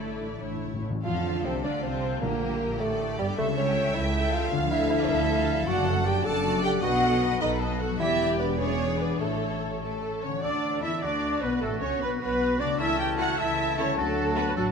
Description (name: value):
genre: classical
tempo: 102 BPM (dotted quarters)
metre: 6/8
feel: rubato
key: D minor, D major from 5.7 s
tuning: A4 = 439 Hz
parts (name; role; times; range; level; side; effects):
- rich symphonic violin section; melody; 0.0-14.6 s; F4 to G5; -37 LUFS; left 3 dB; none
- warm symphonic violin section; second line; 0.0-14.5 s; A3 to A5; -33 LUFS; left 1 dB; none
- clear symphonic viola section; accompaniment; 0.0-14.7 s; G3 to G5; -32 LUFS; right 1 dB; none
- concert harp; arpeggios; 0.0-14.7 s; F#2 to A5; -33 LUFS; left 13 dB; none
- clear symphonic cello section; bass; 0.0-14.7 s; C#2 to G4; -34 LUFS; right 2 dB; none
- rich symphonic double bass section; bass; 0.0-14.7 s; E1 to F2; -33 LUFS; right 4 dB; none
- timpani; percussion; 0.4-2.8 s; A2 to D3; -36 LUFS; equal; none
- dark bassoon; accompaniment; 1.0-14.7 s; F#3 to A4; -30 LUFS; right 2 dB; none
- mellow large flute ensemble; second line; 10.4-14.7 s; A4 to A5; -35 LUFS; left 5 dB; none
- warm oboe; second line; 10.4-14.7 s; C#4 to A4; -36 LUFS; equal; none
- mellow French horn section; sustained chords; 10.4-14.7 s; E3 to E4; -33 LUFS; left 4 dB; none
- clear trumpet; stabs; 10.4-14.7 s; A4 to A5; -34 LUFS; right 2 dB; none
room: moderate concert hall reverb, RT60 1.9 s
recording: none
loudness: -24 LUFS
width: side -6 dB against mid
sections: 0.0-1.0 A section; 1.0-10.4 B section; 10.4-14.7 C section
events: timpani fill 0.4-1.0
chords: 0.4 A; 1.0 Dm; 2.2 Em7b5/Bb; 3.4 A7/C#; 4.5 Dm; 5.7 D/F#; 6.8 B7; 8.0 Em7; 8.6 E7; 9.2 A; 10.4 D; 11.6 Bm; 12.8 A/C#; 14.0 D